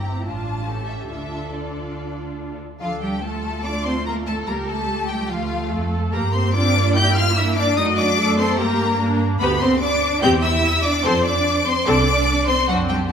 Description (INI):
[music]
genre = quick classical-period movement for string orchestra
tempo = 146 BPM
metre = 4/4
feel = rubato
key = D minor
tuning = A4 = 437 Hz
[part]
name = warm studio violin section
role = melody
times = 0.0-13.0 s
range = D5 to G6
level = -23 LUFS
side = left 4 dB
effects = none
[part]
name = rich studio violin section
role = second line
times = 0.0-13.1 s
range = F4 to G5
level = -26 LUFS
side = left 1 dB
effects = none
[part]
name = rich symphonic viola section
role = accompaniment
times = 0.0-13.1 s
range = G3 to A4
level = -24 LUFS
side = equal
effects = none
[part]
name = warm studio cello section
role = bass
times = 0.0-13.1 s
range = G2 to G4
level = -26 LUFS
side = right 2 dB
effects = none
[part]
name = warm studio double bass section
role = bass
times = 0.0-13.1 s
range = G1 to G2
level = -24 LUFS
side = right 2 dB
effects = none
[sound]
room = wet concert hall reverb, RT60 2.0 s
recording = minimal, uncompressed stereo recording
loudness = -17 LUFS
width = side -7 dB against mid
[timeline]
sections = 0.0-2.8 A section; 2.8-13.1 B section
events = none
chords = 0.3 Dm/A; 0.7 A7; 1.1 Dm; 4.5 A7/C#; 5.3 Dm; 6.1 Gm; 7.8 D7/F#; 8.6 Gm; 9.4 G/D; 10.2 C/E; 11.0 F